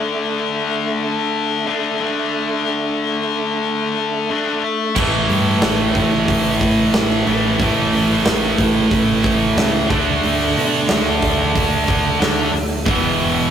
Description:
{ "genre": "hard rock", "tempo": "91 BPM", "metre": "4/4", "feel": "straight", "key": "unclear", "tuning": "A4 = 440 Hz", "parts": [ { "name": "mellow tonewheel organ", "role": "sustained chords", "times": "0.0-13.5 s", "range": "E3 to E5", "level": "-27 LUFS", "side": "right 2 dB", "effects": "slow rotary speaker, chorus vibrato" }, { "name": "heavy high-gain guitar", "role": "riff", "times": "0.0-13.5 s", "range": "E2 to D4", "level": "-20 LUFS", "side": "left 5 dB", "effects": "distortion" }, { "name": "scooped high-gain guitar", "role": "riff", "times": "5.0-13.5 s", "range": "E2 to D4", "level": "-18 LUFS", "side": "right 5 dB", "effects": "distortion" }, { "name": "fingered electric bass", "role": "bass", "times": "5.0-13.5 s", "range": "E1 to B2", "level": "-24 LUFS", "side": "equal", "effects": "none" }, { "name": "huge arena drum kit", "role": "drums", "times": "5.0-13.3 s", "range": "crash cymbal, hi-hat, kick drum, snare drum", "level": "-20 LUFS", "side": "right 1 dB", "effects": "none" } ], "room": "moderate stone room reverb, RT60 1.0 s", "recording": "rough rehearsal-room recording, warm saturation", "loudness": "-15 LUFS", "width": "side -8 dB against mid", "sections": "0.0-13.5 A section", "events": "none", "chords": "0.0 D5; 5.0 A5; 9.9 D5; 12.9 E5" }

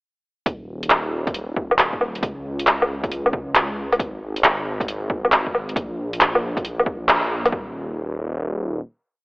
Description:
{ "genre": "future garage", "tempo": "136 BPM", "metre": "4/4", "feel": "swing 66% on 16ths", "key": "unclear", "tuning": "A4 = 441 Hz", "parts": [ { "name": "swelling detuned saw bass", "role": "bass", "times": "0.5-8.8 s", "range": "Eb1 to Db2", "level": "-28 LUFS", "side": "equal", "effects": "sidechain pumping" }, { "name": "deep house drum kit", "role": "drums", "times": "0.5-7.5 s", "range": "handclaps, hi-hat, woodblock", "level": "-18 LUFS", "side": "equal", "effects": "overdrive" }, { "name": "electronic kick drum", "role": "drums", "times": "0.5-7.6 s", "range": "none", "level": "-26 LUFS", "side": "equal", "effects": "overdrive" } ], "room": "moderate lush hall reverb, RT60 1.8 s, digital ambience", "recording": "telephone sound", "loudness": "-20 LUFS", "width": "side -29 dB against mid", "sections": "0.5-7.5 groove; 7.5-9.2 final note", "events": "band accent 7.1", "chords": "none" }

